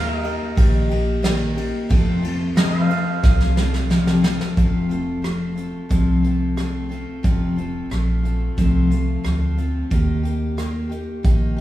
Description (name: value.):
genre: honky-tonk and classic country.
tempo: 90 BPM.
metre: 4/4.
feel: straight.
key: F mixolydian.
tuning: A4 = 440 Hz.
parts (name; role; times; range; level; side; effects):
picked steel-string acoustic guitar; accompaniment; 0.0-11.6 s; F2 to G4; -22 LUFS; left 2 dB; none.
pedal steel guitar; sustained chords; 0.0-4.6 s; Bb4 to F5; -28 LUFS; right 2 dB; none.
vintage muted fingered electric bass; bass; 0.0-11.6 s; F1 to F2; -22 LUFS; right 1 dB; none.
soft brush drum kit; drums; 0.2-11.6 s; hi-hat, kick drum, ride cymbal, rim click, snare drum; -21 LUFS; right 1 dB; none.
room: moderate scoring stage reverb, RT60 1.9 s.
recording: recorded in a church or concert hall, small room ambience.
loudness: -18 LUFS.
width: side -14 dB against mid.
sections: 0.0-4.6 A section; 4.6-11.6 B section.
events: drum fill 3.2-4.6.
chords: 0.0 Eb; 1.9 F; 9.9 Eb.